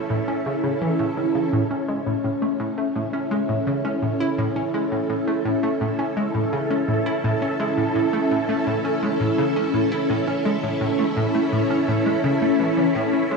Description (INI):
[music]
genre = ambient, sequencer-driven space music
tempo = 84 BPM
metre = 4/4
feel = straight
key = A major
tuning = A4 = 440 Hz
[part]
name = string machine, full ensemble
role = sustained chords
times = 0.0-13.4 s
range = C#4 to A4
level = -21 LUFS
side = equal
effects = phaser, ensemble chorus, shimmer reverb
[part]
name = analog pluck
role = riff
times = 0.1-13.4 s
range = A2 to E4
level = -25 LUFS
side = equal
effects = chorus, vintage 12-bit sampler grit, tape echo, shimmer reverb
[sound]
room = wet lush hall reverb, RT60 2.6 s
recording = dreamy mix soaked in reverb, studio ambience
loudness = -20 LUFS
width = side -4 dB against mid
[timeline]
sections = 0.0-1.5 A section; 1.5-13.4 A section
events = none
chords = 0.0 A